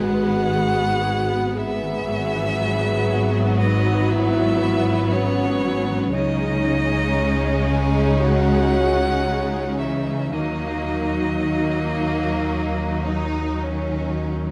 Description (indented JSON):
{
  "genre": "cinematic, emotional film score for orchestra",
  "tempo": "54-60 BPM",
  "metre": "4/4",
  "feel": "rubato",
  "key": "unclear",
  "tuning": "A4 = 440 Hz",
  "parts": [
    { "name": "rich violin", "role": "melody", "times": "0.0-14.2 s", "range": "C#5 to G#5", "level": "-30 LUFS", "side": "equal", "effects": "none" },
    { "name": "warm studio violin section", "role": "melody", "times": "0.0-14.5 s", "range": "B3 to D#4", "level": "-36 LUFS", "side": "equal", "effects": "none" },
    { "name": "rich studio violin section", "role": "second line", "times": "0.0-14.5 s", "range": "A#3 to D#4", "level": "-30 LUFS", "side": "equal", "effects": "none" },
    { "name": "warm studio viola section", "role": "accompaniment", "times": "0.0-14.5 s", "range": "F#3 to G#3", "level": "-30 LUFS", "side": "equal", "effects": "none" },
    { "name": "mellow French horn section", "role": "sustained chords", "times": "0.0-14.2 s", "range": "E3 to G#4", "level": "-28 LUFS", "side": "equal", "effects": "none" },
    { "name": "concert harp", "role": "arpeggios", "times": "0.0-14.5 s", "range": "G#2 to G#4", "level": "-33 LUFS", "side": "equal", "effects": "none" },
    { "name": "rich studio cello section", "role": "bass", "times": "0.0-14.5 s", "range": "G#2 to D#3", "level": "-28 LUFS", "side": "equal", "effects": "none" },
    { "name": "warm studio double bass section", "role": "bass", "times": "0.0-14.5 s", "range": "G#1 to D#2", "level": "-29 LUFS", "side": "equal", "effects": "none" }
  ],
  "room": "moderate scoring stage reverb, RT60 1.5 s",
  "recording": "close, detailed microphones",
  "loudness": "-21 LUFS",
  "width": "mono",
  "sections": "0.0-14.5 A section",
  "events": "none",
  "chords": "0.0 G#m; 2.1 Eadd9/G#; 6.1 C#sus2; 10.3 D#m"
}